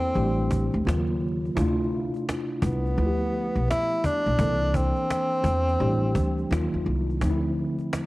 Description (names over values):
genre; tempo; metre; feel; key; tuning
hip hop, jazz-hop; 85 BPM; 4/4; swing 65% on 16ths; D minor; A4 = 440 Hz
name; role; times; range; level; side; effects
breathy tenor saxophone; melody; 0.0-6.9 s; B3 to E4; -27 LUFS; equal; none
tine electric piano; accompaniment; 0.0-8.1 s; C3 to A4; -28 LUFS; equal; medium stereo tremolo, cassette tape
upright bass; bass; 0.0-7.7 s; A1 to E2; -26 LUFS; equal; none
cajon; drums; 0.0-8.1 s; none; -30 LUFS; equal; cassette tape
room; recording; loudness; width
light reverb, studio reverb; home recording on cassette, vinyl crackle; -23 LUFS; side -19 dB against mid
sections
0.0-7.2 A section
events
none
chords
0.2 A7sus4; 0.9 Ebm9; 1.6 Dm9; 3.0 G13; 4.4 C13; 5.8 A7sus4; 6.5 Ebmadd9; 7.2 Dm9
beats
0.16 0.86 | 1.57 2.27 2.98 3.69 | 4.39 5.10 5.80 6.51 | 7.22 7.92